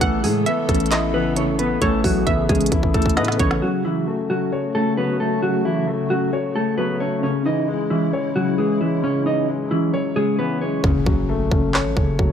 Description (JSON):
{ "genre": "hip hop, trap", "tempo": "133 BPM", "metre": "4/4", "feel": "half-time", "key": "unclear", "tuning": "A4 = 440 Hz", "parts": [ { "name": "mellow electric guitar", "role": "melody", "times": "0.0-10.8 s", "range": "E3 to D#5", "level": "-22 LUFS", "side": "right 1 dB", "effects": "none" }, { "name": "hollow square pluck", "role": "second line", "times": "0.0-3.6 s", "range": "C#5 to F#5", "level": "-26 LUFS", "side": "right 5 dB", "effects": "chorus, digital delay" }, { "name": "dark concert grand piano", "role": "accompaniment", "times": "0.0-12.3 s", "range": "C#3 to C#5", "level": "-23 LUFS", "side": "left 4 dB", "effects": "none" }, { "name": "hollow soft pad", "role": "sustained chords", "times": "0.0-10.8 s", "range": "C#3 to A4", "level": "-29 LUFS", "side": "equal", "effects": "ensemble chorus, tremolo" }, { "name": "growling 808-style bass", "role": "bass", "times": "0.0-3.6, 10.8-12.3 s", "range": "F#1 to A2", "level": "-24 LUFS", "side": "right 1 dB", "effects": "none" }, { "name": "organic electronic drum kit", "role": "drums", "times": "0.0-3.6, 10.8-12.3 s", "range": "handclaps, hi-hat, kick drum, snare drum", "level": "-21 LUFS", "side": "right 1 dB", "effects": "none" }, { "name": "impact", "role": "sound effects", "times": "10.8-12.3 s", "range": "none", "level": "-28 LUFS", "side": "right 1 dB", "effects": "none" } ], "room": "little or no reverb", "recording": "none", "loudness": "-18 LUFS", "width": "side -8 dB against mid", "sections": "0.0-3.6 A section; 3.6-10.8 B section; 10.8-12.3 C section", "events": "drum fill 1.8-3.6; hi-hats muted 10.8-12.3; impact 10.8-12.3", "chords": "0.0 Aadd9; 3.6 F#m; 7.2 C#m; 10.8 F#m" }